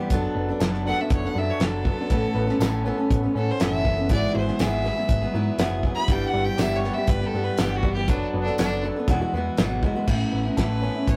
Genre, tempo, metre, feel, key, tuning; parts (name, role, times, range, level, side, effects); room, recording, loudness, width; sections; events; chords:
folk rock and heartland rock; 120 BPM; 4/4; straight; A major; A4 = 440 Hz
picked steel-string acoustic guitar; accompaniment; 0.0-11.2 s; E2 to A4; -30 LUFS; equal
tonewheel organ; sustained chords; 0.0-10.1 s; barely audible
electric guitar through a small old amp; riff; 0.0-11.2 s; E2 to A4; -33 LUFS; equal
picked electric bass; bass; 0.1-11.2 s; E1 to A2; -30 LUFS; equal
damped 70s drum kit; drums; 0.1-11.2 s; crash cymbal, hi-hat, kick drum, snare drum; -27 LUFS; equal
clear fiddle; melody; 0.9-11.2 s; D4 to B5; -31 LUFS; equal
dark upright piano; accompaniment; 2.1-9.9 s; C#4 to B4; -38 LUFS; equal
tambourine; percussion; 2.6-9.7 s; -47 LUFS; equal
moderate small room reverb, RT60 0.5 s; rough rehearsal-room recording; -23 LUFS; mono
0.0-10.1 A section; 10.1-11.2 B section
fiddle solo 0.0-10.1
0.1 D6/F#; 2.1 Aadd9; 4.1 Eadd9/G#; 6.1 G6; 8.1 D6/F#; 9.1 Eadd9; 10.1 Aadd9